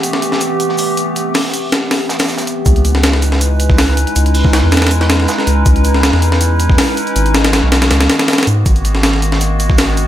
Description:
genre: drum and bass, jungle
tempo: 160 BPM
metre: 4/4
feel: straight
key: unclear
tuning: A4 = 442 Hz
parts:
  - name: warbly tape-like pad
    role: sustained chords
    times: 0.0-10.1 s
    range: D#3 to B4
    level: -17 LUFS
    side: equal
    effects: chorus, built-in reverb
  - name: breakbeat sampler-style drum kit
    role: drums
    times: 0.0-10.1 s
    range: hi-hat, kick drum, snare drum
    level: -14 LUFS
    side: equal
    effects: none
  - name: crunchy breakbeat drum kit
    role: drums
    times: 0.0-10.1 s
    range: hi-hat, shaker, snare drum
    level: -25 LUFS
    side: right 2 dB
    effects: high-pass filter on hats, high-pass filter on snare, high-pass filter on perc, high-pass filter on room
  - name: soft dub sub bass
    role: bass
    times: 2.7-10.1 s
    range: G#1 to G#2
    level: -13 LUFS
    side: equal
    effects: none
room: light reverb, studio reverb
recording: none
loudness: -10 LUFS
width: side -12 dB against mid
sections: 0.0-2.7 A section; 2.7-10.1 B section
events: drop 2.7-10.1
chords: 0.0 Am9; 2.7 C#m9; 7.2 G#m9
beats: 0.03 0.41 0.78 | 1.16 1.53 1.91 2.28 | 2.66 3.03 3.41 3.78 | 4.16 4.53 4.91 5.28 | 5.66 6.03 6.41 6.78 | 7.16 7.53 7.91 8.28 | 8.66 9.03 9.41 9.78

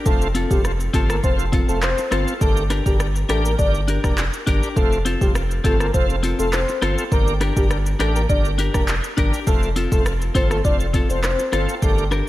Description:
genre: dancehall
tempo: 102 BPM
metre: 4/4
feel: straight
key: unclear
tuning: A4 = 440 Hz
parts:
  - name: clean electric guitar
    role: arpeggios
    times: 0.0-12.3 s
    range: C4 to Bb4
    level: -26 LUFS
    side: left 3 dB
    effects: harmonic tremolo, diffuse ambient delay
  - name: soft octave-layered synth lead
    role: melody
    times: 0.1-12.0 s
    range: G4 to D5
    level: -25 LUFS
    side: left 1 dB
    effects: chorus, tremolo, diffuse ambient delay
  - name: bright tonewheel organ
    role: accompaniment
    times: 0.1-12.0 s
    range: C4 to Bb4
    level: -28 LUFS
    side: equal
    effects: overdrive, chorus vibrato, slow rotary speaker, sidechain pumping
  - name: saturated sub bass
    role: bass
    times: 0.1-12.2 s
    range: F1 to A1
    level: -23 LUFS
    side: equal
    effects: none
  - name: afro-pop drum kit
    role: drums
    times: 0.1-12.3 s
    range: handclaps, hi-hat, kick drum, rim click, shaker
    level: -21 LUFS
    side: equal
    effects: none
room: light reverb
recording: none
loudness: -17 LUFS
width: side -16 dB against mid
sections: 0.0-11.8 A section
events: none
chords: 0.1 F; 2.4 Gm; 4.8 F; 7.1 Gm; 9.5 F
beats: | 0.06 0.65 1.24 1.82 | 2.41 3.00 3.59 4.18 | 4.76 5.35 5.94 6.53 | 7.12 7.71 8.29 8.88 | 9.47 10.06 10.65 11.24 | 11.82

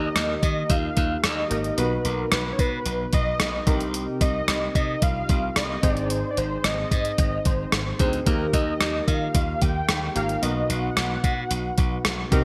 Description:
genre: 1980s-style pop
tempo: 111 BPM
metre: 4/4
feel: straight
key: unclear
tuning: A4 = 435 Hz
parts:
  - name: unison lead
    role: melody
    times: 0.0-12.3 s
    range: Bb4 to G5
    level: -31 LUFS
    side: equal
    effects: digital delay
  - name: warm analog keys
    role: accompaniment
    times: 0.0-12.4 s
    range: Ab2 to C5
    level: -31 LUFS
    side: equal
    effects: chorus, tremolo
  - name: glassy slap bass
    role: bass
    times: 0.0-12.4 s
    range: Ab1 to Eb3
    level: -31 LUFS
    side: equal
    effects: none
  - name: clean 12-bit digital drum machine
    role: drums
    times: 0.2-12.4 s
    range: hi-hat, kick drum, rim click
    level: -26 LUFS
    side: equal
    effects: gated reverb
room: moderate lush hall reverb, RT60 1.6 s, digital ambience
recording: bright 1980s-style digital production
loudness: -24 LUFS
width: mono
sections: 0.0-12.4 A section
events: none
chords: 0.0 Eb; 1.8 B; 3.7 Cm7; 5.8 Ab; 8.3 Eb; 10.4 B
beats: 0.16 0.70 1.24 | 1.78 2.32 2.86 3.40 | 3.94 4.48 5.02 5.56 | 6.10 6.64 7.18 7.72 | 8.27 8.81 9.35 9.89 | 10.43 10.97 11.51 12.05

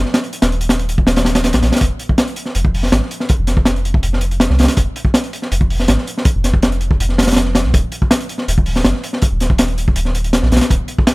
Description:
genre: drum and bass, jungle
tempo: 162 BPM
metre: 4/4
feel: straight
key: F phrygian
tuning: A4 = 440 Hz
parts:
  - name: soft dub sub bass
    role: bass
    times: 0.0-10.8 s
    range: Eb1 to C2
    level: -17 LUFS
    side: equal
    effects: tube saturation
  - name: crunchy breakbeat drum kit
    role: drums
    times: 0.1-11.1 s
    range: hi-hat, kick drum, snare drum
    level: -14 LUFS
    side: equal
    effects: none
room: little or no reverb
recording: none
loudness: -13 LUFS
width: side -23 dB against mid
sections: 0.0-11.1 A section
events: kick drops out 1.1-1.8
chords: none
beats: | 0.33 0.70 1.07 1.44 | 1.81 2.18 2.55 2.92 | 3.29 3.67 4.04 4.41 | 4.78 5.15 5.52 5.89 | 6.26 6.63 7.00 7.37 | 7.74 8.11 8.48 8.85 | 9.22 9.59 9.96 10.33 | 10.70 11.07

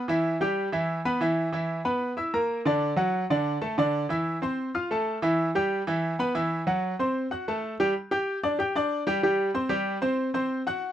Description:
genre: latin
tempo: 187 BPM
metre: 4/4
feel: straight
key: G major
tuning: A4 = 440 Hz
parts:
  - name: bright baby grand piano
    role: solo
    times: 0.0-10.9 s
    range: D3 to G6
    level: -24 LUFS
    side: equal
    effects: none
room: light reverb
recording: dry, close 1970s-style studio recording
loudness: -24 LUFS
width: side -11 dB against mid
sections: 0.0-7.9 A section; 7.9-10.9 B section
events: none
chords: 0.2 Em; 1.5 E5; 2.2 Bb; 2.8 D; 4.1 C/E; 4.7 F; 5.4 Em; 6.7 F#dim; 7.9 G5; 9.2 Gsus4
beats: | 0.25 0.57 0.89 1.21 | 1.53 1.85 2.17 2.50 | 2.82 3.14 3.46 3.78 | 4.10 4.42 4.74 5.06 | 5.38 5.70 6.02 6.34 | 6.67 6.99 7.31 7.63 | 7.95 8.27 8.59 8.91 | 9.23 9.55 9.87 10.19 | 10.51 10.83

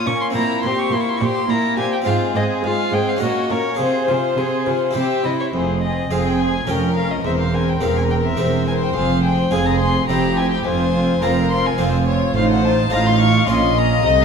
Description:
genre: classical, baroque-style concerto movement with solo episodes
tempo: 106 BPM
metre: 3/4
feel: straight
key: F minor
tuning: A4 = 439 Hz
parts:
  - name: warm chamber violin section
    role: melody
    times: 0.0-14.2 s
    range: Eb4 to E5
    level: -28 LUFS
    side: left 4 dB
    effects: none
  - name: warm violin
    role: melody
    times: 0.0-14.2 s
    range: C5 to Db6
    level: -24 LUFS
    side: left 2 dB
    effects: none
  - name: warm chamber violin section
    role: second line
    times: 0.0-14.2 s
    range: Db4 to F5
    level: -23 LUFS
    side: left 5 dB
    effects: none
  - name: dark chamber viola section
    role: accompaniment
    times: 0.0-14.2 s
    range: Ab3 to F4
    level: -26 LUFS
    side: right 2 dB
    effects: none
  - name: harpsichord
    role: accompaniment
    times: 0.0-14.2 s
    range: E2 to C5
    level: -24 LUFS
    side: right 1 dB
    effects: none
  - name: warm chamber cello section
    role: bass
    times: 0.1-14.2 s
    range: E2 to C3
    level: -23 LUFS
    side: right 4 dB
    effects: none
  - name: rich chamber double bass section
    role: bass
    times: 5.5-14.2 s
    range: E1 to C2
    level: -22 LUFS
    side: right 4 dB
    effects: none
room: wet recital hall reverb, RT60 1.2 s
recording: none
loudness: -16 LUFS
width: side -6 dB against mid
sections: 0.0-5.5 A section; 5.5-14.2 A section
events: none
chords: 0.4 C7/Bb; 2.1 Fm/Ab; 3.2 Gb/Bb; 3.8 Fm/C; 5.0 C; 5.5 Fm; 6.7 Gm7b5/F; 7.2 C7/E; 9.0 Fm; 10.1 C7/F; 10.7 Fm; 12.4 F7/A; 13.5 Bbm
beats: | 0.35 0.92 1.49 | 2.06 2.63 3.21 | 3.79 4.37 4.95 | 5.53 6.11 6.68 | 7.24 7.82 8.38 | 8.95 9.52 10.09 | 10.66 11.22 11.79 | 12.35 12.92 13.48 | 14.05

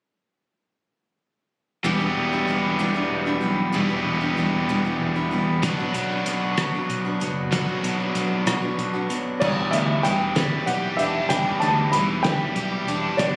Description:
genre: folk rock and heartland rock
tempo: 63 BPM (dotted quarters)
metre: 6/8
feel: straight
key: E minor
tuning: A4 = 440 Hz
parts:
  - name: picked steel-string acoustic guitar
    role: accompaniment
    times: 1.8-13.4 s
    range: E2 to F#4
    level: -30 LUFS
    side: equal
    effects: none
  - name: overdriven electric guitar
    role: riff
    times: 1.8-13.4 s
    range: E2 to G4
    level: -27 LUFS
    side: equal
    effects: none
  - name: picked electric bass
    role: bass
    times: 1.8-13.4 s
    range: E1 to B2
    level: -30 LUFS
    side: equal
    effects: none
  - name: cloth-damped thuddy drum kit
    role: drums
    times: 5.6-13.3 s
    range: crash cymbal, hi-hat, kick drum, rim click, snare drum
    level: -30 LUFS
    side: equal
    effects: none
  - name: dark baby grand piano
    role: melody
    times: 9.4-13.4 s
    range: D5 to B5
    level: -26 LUFS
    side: equal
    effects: none
  - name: bright tonewheel organ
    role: sustained chords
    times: 9.4-13.4 s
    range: G4 to D6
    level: -38 LUFS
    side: equal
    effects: none
room: light reverb, small room ambience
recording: recorded on a phone in the room, club reverb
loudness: -23 LUFS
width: mono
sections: 1.8-9.4 A section; 9.4-13.4 B section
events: none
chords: 1.8 Em7; 5.6 Bm; 9.4 Em7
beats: | 1.84 2.79 | 3.74 4.68 | 5.63 6.58 | 7.52 8.47 | 9.41 10.36 | 11.30 12.25 | 13.20

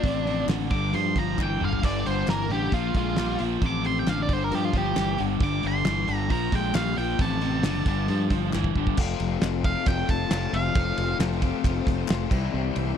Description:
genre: classic rock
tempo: 134 BPM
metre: 4/4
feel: straight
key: unclear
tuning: A4 = 440 Hz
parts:
  - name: octave-fuzz lead guitar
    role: melody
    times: 0.0-11.2 s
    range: D4 to D6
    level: -30 LUFS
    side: right 2 dB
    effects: distortion
  - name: biting overdriven guitar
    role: riff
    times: 0.0-9.0 s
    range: F2 to Ab3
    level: -31 LUFS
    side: right 18 dB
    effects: none
  - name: overdriven electric guitar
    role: riff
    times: 0.0-13.0 s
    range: F2 to F4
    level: -29 LUFS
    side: left 16 dB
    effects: harmonic tremolo
  - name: growling fingered electric bass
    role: bass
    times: 0.0-12.9 s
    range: F1 to G2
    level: -28 LUFS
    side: right 1 dB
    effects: overdrive
  - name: cloth-damped thuddy drum kit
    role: drums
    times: 0.0-12.9 s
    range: crash cymbal, hi-hat, kick drum, ride cymbal, snare drum, toms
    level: -27 LUFS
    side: right 1 dB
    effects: none
  - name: group handclap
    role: percussion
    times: 0.5-12.2 s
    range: none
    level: -40 LUFS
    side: left 14 dB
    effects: none
  - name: bright tonewheel organ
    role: sustained chords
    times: 9.0-13.0 s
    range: C4 to C5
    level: -39 LUFS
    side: right 1 dB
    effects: overdrive, chorus vibrato, slow rotary speaker
room: little or no reverb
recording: dry, close 1970s-style studio recording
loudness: -22 LUFS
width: side -8 dB against mid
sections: 0.0-9.0 A section; 9.0-13.0 B section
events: lead electric guitar solo 0.0-9.0; drum fill 1.4-1.8, 8.5-9.0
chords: 0.0 F/A; 0.7 G5; 2.7 Bb5; 3.6 F/A; 4.3 G5; 6.3 Bb5; 7.2 F/A; 7.9 G5; 9.0 F; 12.3 C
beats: | 0.04 0.49 0.94 1.39 | 1.84 2.28 2.73 3.18 | 3.63 4.08 4.52 4.97 | 5.42 5.86 6.31 6.75 | 7.20 7.65 8.09 8.54 | 8.98 9.43 9.87 10.31 | 10.76 11.20 11.64 12.09 | 12.53 12.97

